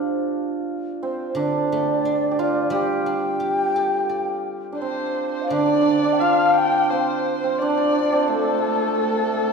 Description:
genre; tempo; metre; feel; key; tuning
chinese traditional, Chinese chamber ensemble; 89 BPM; 4/4; rubato; G shang mode; A4 = 440 Hz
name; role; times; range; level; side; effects
hammered dulcimer; second line; 0.0-9.5 s; A3 to G4; -22 LUFS; right 4 dB; none
guzheng; accompaniment; 0.0-7.6 s; D3 to D5; -30 LUFS; equal; none
mellow hollow low xiao; melody; 1.0-9.5 s; A4 to G5; -24 LUFS; left 3 dB; none
dark erhu; second line; 4.8-9.5 s; A4 to G5; -25 LUFS; left 5 dB; none
room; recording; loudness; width
wet concert hall reverb, RT60 2.4 s; recorded in a church or concert hall; -19 LUFS; side -5 dB against mid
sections
0.0-5.5 A section; 5.5-9.5 B section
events
none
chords
none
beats
| 0.04 0.71 1.38 2.05 | 2.72 3.40 4.09 4.80 | 5.51 6.21 6.91 7.59 | 8.26 8.93

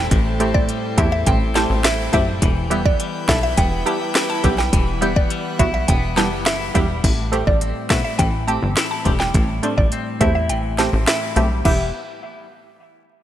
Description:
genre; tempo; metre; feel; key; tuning
dancehall; 104 BPM; 4/4; straight; unclear; A4 = 440 Hz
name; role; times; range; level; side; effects
mallet-like synth pluck; melody; 0.0-11.9 s; D5 to A5; -24 LUFS; right 1 dB; chorus, phaser, low-pass filter, digital delay
airy breathy pad; sustained chords; 0.0-7.0 s; E4 to G5; -29 LUFS; right 1 dB; chorus, sidechain pumping
clean electric guitar; arpeggios; 0.0-11.9 s; A2 to E4; -26 LUFS; left 4 dB; wide subtle chorus, low-pass filter, digital delay
plucky analog bass; bass; 0.0-11.9 s; E1 to E2; -22 LUFS; equal; none
afro-pop drum kit; drums; 0.1-11.8 s; crash cymbal, hi-hat, kick drum, rim click, snare drum; -20 LUFS; equal; none
punchy chord stab; accompaniment; 0.4-11.9 s; G3 to A4; -25 LUFS; right 2 dB; chorus, low-pass filter
room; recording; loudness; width
light reverb; bright 1980s-style digital production; -16 LUFS; side -12 dB against mid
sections
0.0-7.0 A section; 7.0-11.7 B section; 11.7-13.2 C section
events
kick muted 10.5-11.7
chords
0.0 Am7; 2.4 Em; 7.0 Am7; 11.7 Em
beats
| 0.11 0.69 1.27 1.84 | 2.42 3.00 3.58 4.15 | 4.73 5.31 5.88 6.46 | 7.04 7.61 8.19 8.77 | 9.35 9.92 10.50 11.08 | 11.65

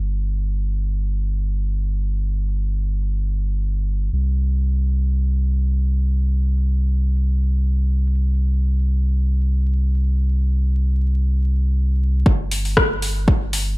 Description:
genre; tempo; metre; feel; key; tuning
dub techno; free time; none; none; unclear; A4 = 440 Hz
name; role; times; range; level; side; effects
warm sub bass; bass; 0.0-13.8 s; G1 to C2; -18 LUFS; equal; sidechain pumping
electronic kick drum; drums; 12.3-13.4 s; none; -16 LUFS; equal; overdrive
deep house drum kit; drums; 12.5-13.6 s; hi-hat, rim click; -20 LUFS; left 1 dB; overdrive, low-pass filter on hats, low-pass filter on snare, low-pass filter on room
room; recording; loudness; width
little or no reverb; vinyl crackle, low-pass filter; -18 LUFS; side -22 dB against mid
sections
0.0-12.3 A section; 12.3-13.8 B section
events
filter sweep 0.0-12.3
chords
none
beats
free time

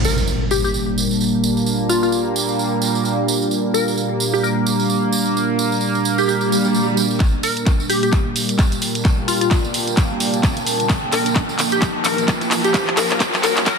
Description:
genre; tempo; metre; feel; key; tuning
bass house; 130 BPM; 4/4; swing 58% on 16ths; G minor; A4 = 441 Hz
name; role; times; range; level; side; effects
sweeping resonant pad; sustained chords; 0.2-13.8 s; Bb2 to Bb3; -21 LUFS; right 1 dB; chorus, sidechain pumping
tambourine; percussion; 0.0-13.8 s; none; -26 LUFS; right 6 dB; none
impact, swell and riser; sound effects; 0.0-1.7, 6.4-13.8 s; none; -24 LUFS; left 1 dB; none
deep dark ambient pad; texture; 0.0-13.8 s; D4 to Bb5; -27 LUFS; right 2 dB; chorus, built-in reverb, sidechain pumping
glassy wavetable pluck; melody; 0.1-13.8 s; F4 to Bb4; -22 LUFS; left 3 dB; chorus, cassette tape, ping-pong delay
electronic kick drum; drums; 7.2-13.8 s; none; -18 LUFS; equal; none
garage drum kit; drums; 7.2-13.8 s; handclaps, hi-hat; -23 LUFS; equal; soft clipping on snare
room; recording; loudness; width
moderate lush hall reverb, RT60 1.9 s, digital ambience; dense, heavily limited modern master, high-pass filter; -16 LUFS; side -5 dB against mid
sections
0.0-7.2 A section; 7.2-13.8 B section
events
impact 0.0-1.7; swell 6.4-7.2; build-up 7.2-13.8; drum fill 7.2-13.8; riser 7.2-13.8; filter sweep on analog synth pad 7.2-13.8; filter sweep 7.2-13.8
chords
0.0 Gmadd9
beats
0.28 0.74 1.20 | 1.67 2.13 2.59 3.05 | 3.51 3.97 4.43 4.90 | 5.36 5.82 6.28 6.74 | 7.20 7.67 8.13 8.59 | 9.05 9.51 9.97 10.43 | 10.90 11.36 11.82 12.28 | 12.74 13.20 13.66

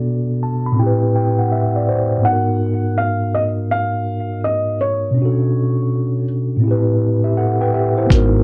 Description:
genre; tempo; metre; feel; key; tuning
lo-fi hip hop; 82 BPM; 4/4; swing 64% on 16ths; unclear; A4 = 440 Hz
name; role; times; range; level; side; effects
felt-muted upright piano; melody; 0.0-6.2 s; C#5 to F#5; -24 LUFS; equal; low-pass filter
mellow tine electric piano; accompaniment; 0.0-8.4 s; G#2 to B5; -19 LUFS; equal; cassette tape, low-pass filter
deep dub fingered electric bass; bass; 8.1-8.4 s; G#1; -18 LUFS; equal; transformer saturation
dusty soul sampler-style drum kit; drums; 8.1-8.3 s; hi-hat, kick drum; -16 LUFS; equal; overdrive
room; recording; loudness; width
moderate studio reverb, RT60 0.6 s; worn, warbling old tape, cassette tape, warbly pitch drift; -18 LUFS; mono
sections
0.0-8.1 A section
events
filter sweep 0.0-8.1; tine electric piano fill 0.1-2.2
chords
0.0 Bm7; 0.8 Am9; 2.2 G#m9; 5.2 Bm9; 6.6 Am9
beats
0.05 0.78 1.52 | 2.25 2.98 3.71 4.44 | 5.17 5.91 6.64 7.37 | 8.10

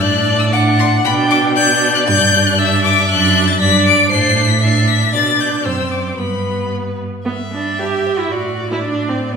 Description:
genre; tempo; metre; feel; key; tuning
quick classical-period movement for string quartet; 116 BPM; 2/4; rubato; G major; A4 = 440 Hz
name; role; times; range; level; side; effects
rich violin; melody; 0.0-9.4 s; B4 to D7; -16 LUFS; left 6 dB; none
rich violin; second line; 0.0-9.4 s; B4 to G5; -21 LUFS; left 3 dB; none
clear viola; accompaniment; 0.0-9.4 s; B3 to G4; -18 LUFS; right 3 dB; none
rich cello; bass; 0.0-9.4 s; F#2 to B2; -18 LUFS; right 3 dB; none
room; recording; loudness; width
wet recital hall reverb, RT60 1.7 s; recorded in a church or concert hall; -12 LUFS; side -6 dB against mid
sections
0.0-7.3 A section; 7.3-9.4 A section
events
none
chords
0.0 D/A; 1.0 G/B; 2.1 G5; 3.1 D/F#; 3.6 G; 4.1 D5/A; 5.1 G/B; 5.7 D7/F#; 6.2 G; 8.3 D5/A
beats
| 0.00 0.52 | 1.04 1.56 | 2.08 2.59 | 3.10 3.61 | 4.11 4.62 | 5.13 5.65 | 6.18 6.71 | 7.25 7.78 | 8.31 8.82 | 9.34

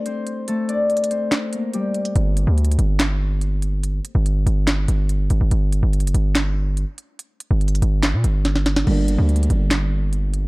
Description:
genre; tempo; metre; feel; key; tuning
hip hop, trap; 143 BPM; 4/4; half-time; G minor; A4 = 443 Hz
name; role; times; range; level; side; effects
Celtic harp; melody; 0.0-4.8 s; G3 to D5; -23 LUFS; left 2 dB; none
trap drum kit; drums; 0.1-10.4 s; crash cymbal, handclaps, hi-hat, snare drum; -24 LUFS; right 1 dB; none
distorted 808-style bass; bass; 2.2-10.5 s; F#1 to Bb2; -18 LUFS; equal; distortion
dark concert grand piano; accompaniment; 8.8-10.5 s; D3 to D4; -24 LUFS; right 2 dB; none
room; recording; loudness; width
digital ambience; dark, warm production; -18 LUFS; side -23 dB against mid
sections
0.0-10.5 A section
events
break 0.0-2.2; drum fill 8.4-8.9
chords
0.0 Dsus4; 2.2 G5; 5.5 N.C.; 8.9 Gm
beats
0.06 | 0.48 0.90 1.32 1.74 | 2.16 2.58 3.00 3.42 | 3.83 4.25 4.67 5.09 | 5.51 5.93 6.35 6.77 | 7.19 7.61 8.03 8.45 | 8.87 9.29 9.71 10.13

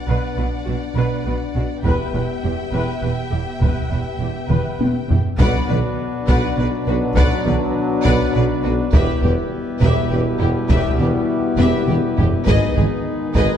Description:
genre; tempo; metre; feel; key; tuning
cinematic, epic orchestral film score; 68 BPM (dotted quarters); 6/8; straight; B minor; A4 = 438 Hz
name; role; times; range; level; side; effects
rich symphonic violin section; melody; 0.0-13.6 s; G4 to G5; -29 LUFS; left 6 dB; none
rich symphonic violin section; second line; 0.0-13.6 s; E4 to E5; -31 LUFS; left 2 dB; none
mellow French horn section; sustained chords; 0.0-13.6 s; B3 to G4; -26 LUFS; left 6 dB; none
rich symphonic viola section; accompaniment; 0.1-13.6 s; F#4 to B4; -29 LUFS; equal; none
rich symphonic cello section; bass; 0.1-13.4 s; E2 to B2; -25 LUFS; right 2 dB; none
warm studio double bass section; bass; 0.1-13.4 s; E1 to B1; -23 LUFS; right 3 dB; none
taiko ensemble; drums; 1.9-13.6 s; none; -20 LUFS; equal; none
bright trombone section; sustained chords; 5.4-13.6 s; B2 to G#3; -28 LUFS; right 2 dB; none
pipe organ, foundations; sustained chords; 5.4-13.6 s; B3 to B4; -26 LUFS; left 2 dB; none
mellow tuba; bass; 5.4-13.5 s; E1 to B1; -25 LUFS; right 2 dB; none
room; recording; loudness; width
moderate scoring stage reverb, RT60 1.9 s; dark, warm production; -16 LUFS; side -9 dB against mid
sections
0.0-5.4 A section; 5.4-13.6 B section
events
drum fill 4.5-5.4, 11.6-12.5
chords
0.0 Bm; 1.9 Em; 5.4 Bm; 8.9 Em; 12.5 G#m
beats
| 0.08 0.96 | 1.85 2.74 | 3.62 4.51 | 5.40 6.28 | 7.17 8.05 | 8.94 9.82 | 10.70 11.59 | 12.47 13.36

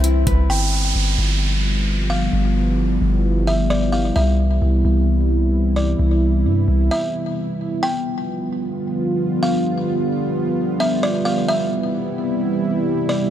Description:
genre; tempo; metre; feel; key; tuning
hip hop; 131 BPM; 4/4; half-time; unclear; A4 = 441 Hz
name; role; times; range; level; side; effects
buzzing kalimba; melody; 0.0-13.3 s; D5 to G5; -25 LUFS; equal; ping-pong delay
dark analog pad; sustained chords; 0.0-13.3 s; C3 to B4; -21 LUFS; equal; chorus, sidechain pumping
concert harp; arpeggios; 0.0-2.6 s; C4 to B4; -29 LUFS; left 4 dB; ping-pong delay
long sustained 808-style bass; bass; 0.0-6.9 s; G1 to G2; -18 LUFS; equal; none
downlifter; sound effects; 0.5-4.2 s; none; -26 LUFS; right 3 dB; none
room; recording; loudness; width
light reverb; none; -17 LUFS; side -11 dB against mid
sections
0.5-7.8 A section; 7.8-13.3 B section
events
break 6.9-7.8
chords
0.5 G7; 4.2 Cmaj7; 7.8 G7; 11.5 Cmaj7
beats
0.04 | 0.50 0.95 1.41 1.87 | 2.33 2.79 3.25 3.70 | 4.16 4.62 5.08 5.54 | 5.99 6.45 6.91 7.37 | 7.83 8.28 8.74 9.20 | 9.66 10.12 10.57 11.03 | 11.49 11.95 12.41 12.86

